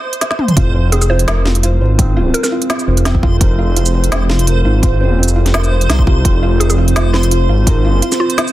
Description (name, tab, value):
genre	half-time drum and bass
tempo	169 BPM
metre	4/4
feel	swing 53% on 16ths, half-time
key	F minor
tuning	A4 = 436 Hz
part	backwards swelling texture	texture	0.0-8.5 s	C5	-25 LUFS	right 2 dB	built-in reverb
part	organic electronic drum kit	drums	0.1-8.5 s	hi-hat, shaker, snare drum, toms	-18 LUFS	right 1 dB	overdrive
part	deep dark ambient pad	sustained chords	1.7-8.5 s	C4 to C5	-23 LUFS	right 1 dB	chorus, built-in reverb, sidechain pumping
part	felt-muted upright piano	arpeggios	0.6-8.5 s	C4 to C5	-22 LUFS	right 1 dB	dub echo
part	dark detuned saw bass	bass	0.6-8.0 s	F1 to C2	-12 LUFS	equal	tube saturation
part	electronic kick drum	drums	0.6-7.7 s	none	-13 LUFS	equal	none
part	mallet-like synth pluck	melody	0.9-2.5, 6.6-8.4 s	F4 to C5	-22 LUFS	right 1 dB	chorus, cassette tape, dub echo
room	little or no reverb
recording	dense, heavily limited modern master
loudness	-11 LUFS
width	side -15 dB against mid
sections	0.0-8.5 A section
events	break 0.0-0.6; drum fill 0.3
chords	0.0 Fm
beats	0.21 | 0.57 0.92 1.28 1.63 | 1.99 2.34 2.70 3.05 | 3.41 3.76 4.12 4.47 | 4.83 5.18 5.54 5.89 | 6.25 6.60 6.96 7.31 | 7.67 8.02 8.38